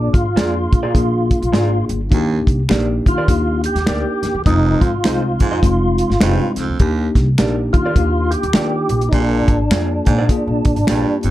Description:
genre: uptempo 1960s-style soul.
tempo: 103 BPM.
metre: 4/4.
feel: swing 60% on 8ths.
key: Eb major.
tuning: A4 = 441 Hz.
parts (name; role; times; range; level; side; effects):
percussive tonewheel organ; melody; 0.0-11.2 s; D4 to G4; -20 LUFS; right 1 dB; overdrive, chorus vibrato, slow rotary speaker, plate reverb.
mellow tine electric piano; accompaniment; 0.0-11.3 s; Ab3 to Bb4; -22 LUFS; left 3 dB; medium stereo tremolo, plate reverb.
upright bass; bass; 0.0-11.3 s; F1 to Eb3; -20 LUFS; equal; none.
warm soul drum kit; drums; 0.1-11.3 s; hi-hat, kick drum, snare drum; -16 LUFS; equal; none.
electric guitar through a small old amp; stabs; 0.4-11.1 s; Bb3 to Eb5; -26 LUFS; right 4 dB; plate reverb.
raspy baritone saxophone; riff; 2.1-11.3 s; Eb2 to Bb2; -23 LUFS; right 6 dB; none.
finger snap; percussion; 2.7-11.0 s; none; -26 LUFS; left 5 dB; none.
room: light reverb.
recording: dark, warm production.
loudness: -14 LUFS.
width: side -14 dB against mid.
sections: 0.0-11.3 A section.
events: none.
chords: 0.0 Bb7; 2.1 Ebmaj7; 4.5 Fm7; 6.8 Ebmaj7; 9.1 Bb7.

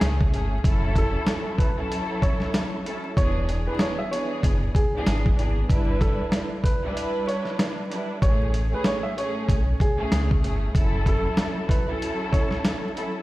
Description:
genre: hip hop, boom-bap hip-hop.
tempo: 95 BPM.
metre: 4/4.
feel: swing 59% on 16ths.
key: A major.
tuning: A4 = 440 Hz.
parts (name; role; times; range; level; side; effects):
warm upright piano; melody; 0.0-12.8 s; G#4 to E5; -32 LUFS; right 1 dB; high-pass filter, low-pass filter, tape echo.
dark studio string section; accompaniment; 0.0-13.2 s; A2 to B4; -28 LUFS; equal; high-pass filter, low-pass filter.
sub bass with octave; bass; 0.0-11.3 s; E1 to C#2; -24 LUFS; equal; none.
dusty soul sampler-style drum kit; drums; 0.0-13.1 s; hi-hat, kick drum, snare drum; -24 LUFS; equal; none.
room: little or no reverb.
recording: played on a big sound system in a bare room, stone room reverb, vinyl crackle.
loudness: -21 LUFS.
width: side -18 dB against mid.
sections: 0.0-13.2 A section.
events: none.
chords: 0.0 Amaj7; 0.6 F#m7; 3.2 E7; 5.7 G6; 8.2 Amaj7; 10.7 F#m7.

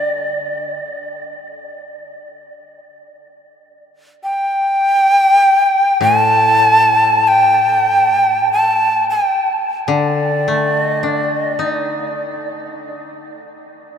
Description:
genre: japanese traditional, Japanese chamber music.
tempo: free time.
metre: none.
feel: none.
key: unclear.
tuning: A4 = 440 Hz.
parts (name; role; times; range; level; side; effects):
breathy bright shakuhachi; melody; 0.0-12.5 s; D5 to A5; -13 LUFS; equal; none.
koto; accompaniment; 0.0-0.8, 6.0-13.7 s; A2 to Eb4; -22 LUFS; left 3 dB; none.
room: wet huge ambient reverb, RT60 8.4 s.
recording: in a vast, echoing space.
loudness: -12 LUFS.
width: side -8 dB against mid.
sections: 0.0-2.8 A section; 2.8-14.0 A section.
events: none.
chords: none.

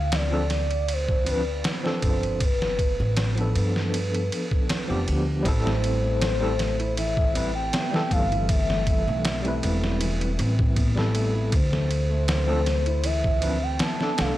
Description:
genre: trip hop.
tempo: 79 BPM.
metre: 4/4.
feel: straight.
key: A minor.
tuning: A4 = 437 Hz.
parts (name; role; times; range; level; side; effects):
pure breathy sine lead; melody; 0.0-14.4 s; B4 to A5; -29 LUFS; left 1 dB; wide subtle chorus, tape echo.
upright bass; bass; 0.0-14.4 s; E1 to G2; -26 LUFS; equal; tube saturation.
trip hop sampler-style drum kit; drums; 0.1-14.4 s; kick drum, ride cymbal, snare drum; -27 LUFS; equal; none.
overdriven tine electric piano; accompaniment; 0.3-14.4 s; E3 to B4; -30 LUFS; equal; medium tremolo, tape echo.
felt-muted upright piano; arpeggios; 5.7-14.4 s; E3 to E4; -32 LUFS; equal; tape echo.
room: digital ambience.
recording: dry, gritty hardware recording.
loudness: -22 LUFS.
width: side -14 dB against mid.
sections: 0.0-5.4 A section; 5.4-14.4 B section.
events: none.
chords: 0.0 Dm7; 2.4 G7; 5.4 Am7; 11.5 D7(no3).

